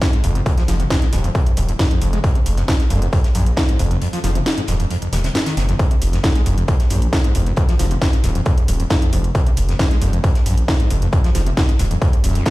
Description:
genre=driving peak-time techno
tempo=135 BPM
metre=4/4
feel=straight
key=F phrygian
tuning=A4 = 440 Hz
part: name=screaming distorted acid line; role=riff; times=0.0-12.5 s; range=F1 to Ab3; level=-23 LUFS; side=equal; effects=distortion, wide subtle chorus, sidechain pumping, ping-pong delay
part: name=electronic kick drum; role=drums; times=0.0-12.5 s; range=none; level=-16 LUFS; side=equal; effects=distortion, overdrive
part: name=loose indie drum kit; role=drums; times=0.0-12.5 s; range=hi-hat, snare drum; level=-34 LUFS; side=left 2 dB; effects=sidechain pumping on hats, high-pass filter on hats, high-pass filter on snare, high-pass filter on room
part: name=techno drum kit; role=drums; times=0.0-12.5 s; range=hi-hat, snare drum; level=-24 LUFS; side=equal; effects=overdrive
part: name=gritty driven synth bass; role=bass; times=0.2-12.4 s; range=Eb1 to Bb1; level=-19 LUFS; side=equal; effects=distortion, sidechain pumping
room=studio reverb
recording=played on a big sound system in a bare room, large studio reverb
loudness=-15 LUFS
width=side -18 dB against mid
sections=0.0-12.5 A section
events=break 4.0-5.8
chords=none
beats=0.02 | 0.46 0.91 1.35 1.79 | 2.24 2.68 3.13 3.57 | 4.02 4.46 4.91 5.35 | 5.79 6.24 6.68 7.13 | 7.57 8.02 8.46 8.90 | 9.35 9.79 10.24 10.68 | 11.13 11.57 12.02 12.46

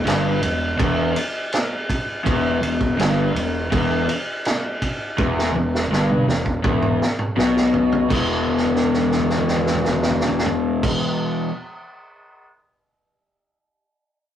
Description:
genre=blues rock power trio and southern rock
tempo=82 BPM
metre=4/4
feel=straight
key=E minor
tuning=A4 = 440 Hz
part: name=fuzz fingered electric bass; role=bass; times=0.0-10.9 s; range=E1 to B1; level=-24 LUFS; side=right 1 dB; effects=overdrive
part: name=raw garage guitar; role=riff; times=0.1-11.5 s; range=E2 to E3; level=-21 LUFS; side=left 2 dB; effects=overdrive
part: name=vintage drum kit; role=drums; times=0.1-12.5 s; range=crash cymbal, kick drum, ride cymbal, snare drum, toms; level=-22 LUFS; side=right 1 dB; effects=none
room=light reverb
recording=rough rehearsal-room recording, warm saturation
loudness=-18 LUFS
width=side -10 dB against mid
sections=0.0-8.1 A section; 8.1-11.0 B section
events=drum fill 5.2-8.1, 8.5-10.8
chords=0.0 Em; 8.1 E5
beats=0.06 0.80 1.53 | 2.26 2.99 3.72 4.45 | 5.18 5.91 6.64 7.37 | 8.10 8.83 9.56 10.29

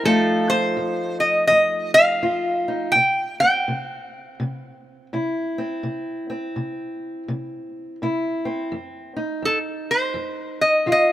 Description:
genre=blues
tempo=83 BPM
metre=4/4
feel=swing 63% on 8ths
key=unclear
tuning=A4 = 440 Hz
part: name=lap resonator guitar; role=melody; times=0.0-11.1 s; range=A4 to G5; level=-18 LUFS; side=equal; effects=none
part: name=fingerpicked steel-string acoustic guitar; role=accompaniment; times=0.0-11.1 s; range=F2 to F4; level=-25 LUFS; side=equal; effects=none
room=light reverb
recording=rough home demo mix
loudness=-19 LUFS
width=side -13 dB against mid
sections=0.0-11.1 A section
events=none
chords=0.0 F7; 2.9 C; 8.7 F7(no3)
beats=| 0.04 0.76 1.49 2.21 | 2.94 3.66 4.39 5.11 | 5.84 6.56 7.28 8.00 | 8.72 9.45 10.17 10.89

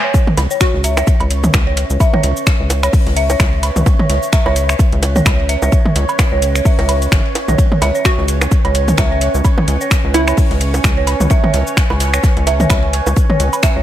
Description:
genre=minimal techno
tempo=129 BPM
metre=4/4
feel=swing 57% on 16ths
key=C# minor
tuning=A4 = 440 Hz
part: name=dark detuned synth bell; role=riff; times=0.0-13.8 s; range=C#5 to E5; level=-21 LUFS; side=right 1 dB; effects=chorus, phaser, sidechain pumping, tape echo
part: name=booming analog drum machine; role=drums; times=0.1-13.7 s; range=cabasa, finger snaps, hi-hat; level=-20 LUFS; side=equal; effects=none
part: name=electronic kick drum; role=drums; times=0.1-13.7 s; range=none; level=-14 LUFS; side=equal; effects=none
part: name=open jazz drum kit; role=drums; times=0.1-13.8 s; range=hi-hat, ride cymbal, snare drum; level=-29 LUFS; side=right 1 dB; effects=sidechain pumping on cymbals, high-pass filter on cymbals, sidechain pumping on hats, high-pass filter on hats, high-pass filter on snare, high-pass filter on room
part: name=bubbling stepped-filter texture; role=texture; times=0.1-13.8 s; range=C#5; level=-26 LUFS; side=right 1 dB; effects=chorus, built-in reverb, sidechain pumping
part: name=warbly tape-like pad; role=texture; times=0.8-13.8 s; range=C#4 to G#5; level=-25 LUFS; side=right 2 dB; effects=chorus, built-in reverb, sidechain pumping
part: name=electronic toms, cowbell and bongos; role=percussion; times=0.3-13.7 s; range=none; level=-19 LUFS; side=right 2 dB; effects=tape echo
part: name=rubbery square bass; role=bass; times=0.4-13.8 s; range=G#1 to C#2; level=-16 LUFS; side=equal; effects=sidechain pumping
part: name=hollow square pluck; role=melody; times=0.6-1.3, 8.1-10.5 s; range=E4 to F#4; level=-19 LUFS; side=equal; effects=analog chorus, tape echo
room=digital ambience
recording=none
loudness=-11 LUFS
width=side -12 dB against mid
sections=0.1-13.8 A section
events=drop 0.1-13.8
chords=0.1 C#m7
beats=| 0.14 0.61 1.07 1.54 | 2.00 2.47 2.93 3.40 | 3.86 4.33 4.79 5.26 | 5.72 6.19 6.65 7.12 | 7.58 8.05 8.52 8.98 | 9.45 9.91 10.38 10.84 | 11.30 11.77 12.24 12.70 | 13.17 13.63

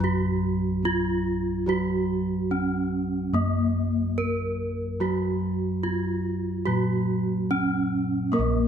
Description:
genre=Javanese gamelan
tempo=72 BPM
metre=4/4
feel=straight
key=unclear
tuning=A4 = 440 Hz
part: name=gamelan-type bronze metallophone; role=melody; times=0.0-8.7 s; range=Bb3 to Bb4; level=-27 LUFS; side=right 1 dB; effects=none
part: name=gamelan-type bronze metallophone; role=accompaniment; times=0.0-8.7 s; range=Gb3 to Bb3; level=-28 LUFS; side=right 1 dB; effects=none
part: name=gamelan-type bossed gongs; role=bass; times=0.0-8.7 s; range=Bb1 to Bb4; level=-29 LUFS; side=left 1 dB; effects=none
room=moderate scoring stage reverb, RT60 1.7 s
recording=none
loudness=-23 LUFS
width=side -8 dB against mid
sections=0.0-8.3 A section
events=none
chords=none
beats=0.01 0.84 | 1.68 2.51 3.35 4.18 | 5.01 5.84 6.68 7.51 | 8.35

